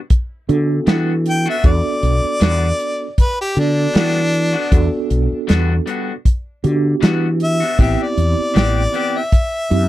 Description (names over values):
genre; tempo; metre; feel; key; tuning
straight-eighth soul blues; 78 BPM; 4/4; swing 55% on 16ths; E minor; A4 = 438 Hz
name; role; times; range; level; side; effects
warm soul drum kit; drums; 0.1-9.9 s; hi-hat, kick drum, snare drum; -14 LUFS; equal; none
mellow tine electric piano; accompaniment; 0.5-9.9 s; B3 to A4; -22 LUFS; right 4 dB; medium stereo tremolo
mellow fretless electric bass; bass; 0.5-9.9 s; A1 to E3; -16 LUFS; equal; none
electric guitar through a small old amp; stabs; 0.9-9.2 s; E3 to G4; -24 LUFS; left 7 dB; none
clear harmonica; melody; 1.3-9.9 s; D4 to G5; -20 LUFS; left 1 dB; none
room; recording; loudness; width
little or no reverb; dry, close 1970s-style studio recording; -14 LUFS; side -15 dB against mid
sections
0.0-9.9 A section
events
none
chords
0.0 Em9; 7.8 Am9